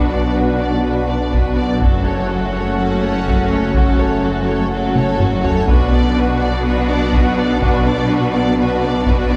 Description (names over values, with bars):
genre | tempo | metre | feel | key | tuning
cinematic, hybrid orchestral and electronic film score | 124 BPM | 4/4 | straight | B minor | A4 = 440 Hz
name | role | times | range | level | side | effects
warm symphonic violin section | melody | 0.0-9.4 s | A4 to D5 | -28 LUFS | equal | none
warm symphonic violin section | second line | 0.0-9.4 s | D4 to A4 | -28 LUFS | equal | none
warm symphonic viola section | accompaniment | 0.0-9.4 s | F#3 to D4 | -28 LUFS | equal | none
mellow French horn section | sustained chords | 0.0-9.4 s | F#3 to D4 | -26 LUFS | equal | none
sweeping resonant pad | sustained chords | 0.0-9.4 s | A3 to F#5 | -24 LUFS | equal | chorus
phased detuned saw bass | bass | 0.0-9.4 s | F#1 to B1 | -26 LUFS | equal | phaser
rich symphonic cello section | bass | 0.0-9.4 s | F#2 to B2 | -24 LUFS | equal | none
rich symphonic double bass section | bass | 0.0-9.4 s | F#1 to B1 | -26 LUFS | equal | none
taiko ensemble | drums | 1.3-9.4 s | none | -20 LUFS | equal | none
room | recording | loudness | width
wet scoring stage reverb, RT60 1.7 s | heard from further back in the room | -16 LUFS | mono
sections
0.0-9.4 A section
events
drum fill 5.0-5.7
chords
0.0 Bm; 1.8 F#m; 5.7 Bm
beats
0.36 0.84 1.33 | 1.81 2.30 2.78 3.26 | 3.75 4.23 4.71 5.20 | 5.68 6.17 6.65 7.13 | 7.62 8.10 8.59 9.07